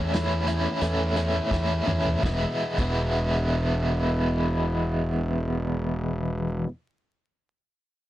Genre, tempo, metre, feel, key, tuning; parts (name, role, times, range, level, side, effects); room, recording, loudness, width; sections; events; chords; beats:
indie rock; 82-90 BPM; 4/4; straight; E major; A4 = 440 Hz
biting overdriven guitar; riff; 0.0-6.7 s; E2 to E4; -26 LUFS; equal; tremolo
fuzz fingered electric bass; bass; 0.0-6.6 s; E1 to E2; -27 LUFS; equal; overdrive
loose indie drum kit; drums; 0.1-3.0 s; crash cymbal, hi-hat, kick drum, snare drum, toms; -30 LUFS; equal
little or no reverb; dry, gritty hardware recording, vinyl crackle; -23 LUFS; side -14 dB against mid
0.0-2.2 A section; 2.2-5.2 B section
slowing down 0.0-2.2; drum fill 1.5-2.2
0.0 A/E; 2.2 E
0.14 0.81 1.51 | 2.24 2.97 3.70 4.44